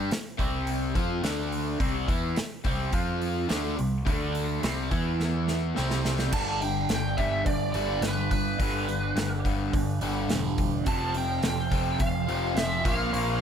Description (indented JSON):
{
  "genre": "classic rock",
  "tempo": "106 BPM",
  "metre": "4/4",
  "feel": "straight",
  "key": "unclear",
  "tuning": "A4 = 441 Hz",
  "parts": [
    { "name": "crunchy overdriven guitar", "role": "riff", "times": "0.0-13.4 s", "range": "F2 to F4", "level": "-31 LUFS", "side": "right 7 dB", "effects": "phaser" },
    { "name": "overdriven electric guitar", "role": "riff", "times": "0.0-13.4 s", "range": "F2 to G4", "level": "-32 LUFS", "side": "left 11 dB", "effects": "none" },
    { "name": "growling picked electric bass", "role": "bass", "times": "0.0-13.4 s", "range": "E1 to F2", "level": "-31 LUFS", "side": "equal", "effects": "overdrive" },
    { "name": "big rock drum kit", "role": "drums", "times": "0.1-13.3 s", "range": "crash cymbal, hi-hat, kick drum, snare drum", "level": "-31 LUFS", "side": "equal", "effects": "none" },
    { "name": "lead guitar through a small cranked amp", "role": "melody", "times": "6.3-13.4 s", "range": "B4 to A5", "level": "-30 LUFS", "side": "right 1 dB", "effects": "wah, overdrive, analog delay" },
    { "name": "bright tonewheel organ", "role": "sustained chords", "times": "10.8-13.4 s", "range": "C4 to F#5", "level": "-40 LUFS", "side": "equal", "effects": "overdrive, fast rotary speaker" }
  ],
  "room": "little or no reverb",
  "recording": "none",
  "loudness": "-25 LUFS",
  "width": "side -8 dB against mid",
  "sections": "0.0-6.3 A section; 6.3-13.4 B section",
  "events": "drum fill 5.2-6.3",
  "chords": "0.0 C5; 1.2 D5; 1.8 C; 2.9 F5; 3.5 C5; 4.1 D5; 4.6 C5; 4.9 E5; 5.8 C5; 6.3 G; 10.9 F; 12.8 Bbsus2"
}